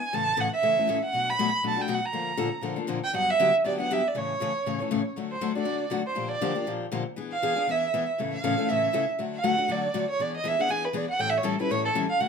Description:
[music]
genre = jazz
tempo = 238 BPM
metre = 4/4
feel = swing 56% on 8ths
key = D major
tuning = A4 = 440 Hz
[part]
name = warm violin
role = melody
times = 0.0-12.3 s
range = A4 to B5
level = -26 LUFS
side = right 3 dB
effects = none
[part]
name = picked steel-string acoustic guitar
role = accompaniment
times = 0.1-12.3 s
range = G2 to A4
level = -29 LUFS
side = left 5 dB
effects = none
[sound]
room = moderate club reverb, RT60 0.6 s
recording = minimal, uncompressed stereo recording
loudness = -24 LUFS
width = side -6 dB against mid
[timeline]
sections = 0.0-5.2 A section; 5.2-12.3 B section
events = violin solo 5.2-12.3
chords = 0.1 A; 1.1 Bm7; 2.1 Bbmaj7; 3.1 Gmaj7; 4.2 A; 5.2 D; 6.2 Bb6; 7.2 E7; 8.2 A; 9.2 D; 10.2 E7; 11.2 A7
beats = | 0.12 0.37 0.62 0.88 | 1.13 1.38 1.63 1.88 | 2.13 2.39 2.64 2.89 | 3.14 3.39 3.65 3.90 | 4.15 4.40 4.65 4.91 | 5.16 5.41 5.66 5.92 | 6.17 6.42 6.67 6.92 | 7.17 7.43 7.68 7.93 | 8.18 8.43 8.69 8.94 | 9.19 9.44 9.69 9.94 | 10.19 10.45 10.70 10.95 | 11.20 11.45 11.70 11.95 | 12.20

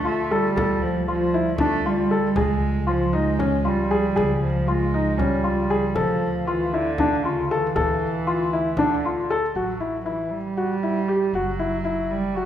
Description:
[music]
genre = contemporary instrumental, chamber music in an uneven meter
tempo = 234 BPM (eighths)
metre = 7/8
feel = straight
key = unclear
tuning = A4 = 440 Hz
[part]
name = warbly tape-like pad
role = sustained chords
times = 0.0-9.5 s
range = C#3 to F5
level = -30 LUFS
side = left 1 dB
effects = chorus, built-in reverb
[part]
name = felt-muted upright piano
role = arpeggios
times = 0.0-12.5 s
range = C#4 to A4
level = -23 LUFS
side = left 2 dB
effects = none
[part]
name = upright bass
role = bass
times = 0.0-12.5 s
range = F#1 to D2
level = -30 LUFS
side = equal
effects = none
[part]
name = warm cello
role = second line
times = 0.1-12.5 s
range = C#3 to A3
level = -25 LUFS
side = right 4 dB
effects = none
[part]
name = frame drum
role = percussion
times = 0.3-9.4 s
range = none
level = -32 LUFS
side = left 1 dB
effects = none
[sound]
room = wet recital hall reverb, RT60 1.5 s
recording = heard from further back in the room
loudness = -20 LUFS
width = side -10 dB against mid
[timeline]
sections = 0.0-9.5 A section; 9.5-12.5 B section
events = none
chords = 0.0 Dm; 2.4 C#; 6.0 Dm; 9.5 A5; 11.3 F#7(no3)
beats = 0.05 0.31 | 0.56 0.82 1.08 1.33 1.59 1.85 2.11 | 2.36 2.62 2.88 3.13 3.39 3.65 3.90 | 4.16 4.42 4.67 4.93 5.19 5.45 5.70 | 5.96 6.21 6.47 6.73 6.98 7.24 7.50 | 7.75 8.01 8.27 8.52 8.78 9.04 9.29 | 9.55 9.80 10.06 10.32 10.57 10.83 11.09 | 11.34 11.60 11.86 12.11 12.37

